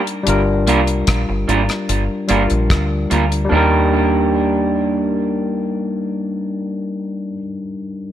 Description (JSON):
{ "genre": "lovers rock reggae", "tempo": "74 BPM", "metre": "4/4", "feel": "straight", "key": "Eb major", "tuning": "A4 = 437 Hz", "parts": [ { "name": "overdriven tine electric piano", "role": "accompaniment", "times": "0.0-8.1 s", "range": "G3 to Bb4", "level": "-20 LUFS", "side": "left 3 dB", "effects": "none" }, { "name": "deep reggae drum kit", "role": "drums", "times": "0.1-3.5 s", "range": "hi-hat, kick drum, rim click", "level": "-20 LUFS", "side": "left 1 dB", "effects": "none" }, { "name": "deep dub fingered electric bass", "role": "bass", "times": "0.3-7.4 s", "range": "G1 to Eb2", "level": "-19 LUFS", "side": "equal", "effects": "none" }, { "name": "electric guitar through a small old amp", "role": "stabs", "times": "0.7-7.4 s", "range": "Bb3 to Bb4", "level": "-20 LUFS", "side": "right 4 dB", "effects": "tape echo" } ], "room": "light reverb", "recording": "none", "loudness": "-15 LUFS", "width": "side -11 dB against mid", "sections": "0.0-3.5 A section; 3.5-6.8 B section", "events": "none", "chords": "0.3 Gm7; 3.5 Ebmaj7", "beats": "| 0.27 1.08 1.89 2.70 | 3.51 4.33 5.14 5.95" }